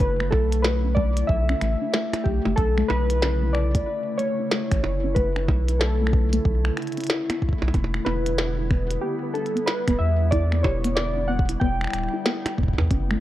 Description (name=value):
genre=IDM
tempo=93 BPM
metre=4/4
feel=swing 62% on 16ths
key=unclear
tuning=A4 = 438 Hz
part: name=warbly lo-fi synth keys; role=melody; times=0.0-12.5 s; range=G4 to G5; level=-27 LUFS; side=equal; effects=chorus, ping-pong delay, shimmer reverb
part: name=glassy FM pad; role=sustained chords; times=0.0-13.2 s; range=C#3 to E4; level=-30 LUFS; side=left 2 dB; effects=ensemble chorus, built-in reverb, sidechain pumping
part: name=soft round pluck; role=arpeggios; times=0.0-13.2 s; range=A3 to B4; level=-31 LUFS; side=equal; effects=lush chorus, vintage 12-bit sampler grit
part: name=round analog bass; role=bass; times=0.0-13.2 s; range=D1 to E2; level=-24 LUFS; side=equal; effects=none
part: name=electronic kick drum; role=drums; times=0.0-13.1 s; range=none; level=-23 LUFS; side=equal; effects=none
part: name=glitchy drum kit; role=drums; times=0.0-13.2 s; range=finger snaps, hi-hat, percussion blips, snare drum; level=-28 LUFS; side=right 1 dB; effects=none
room=light reverb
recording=worn, warbling old tape, cassette tape, warbly pitch drift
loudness=-20 LUFS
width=side -14 dB against mid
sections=0.0-13.2 A section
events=filter sweep on synth arpeggio sound 0.0-13.2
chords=0.0 Bm11; 7.7 Em7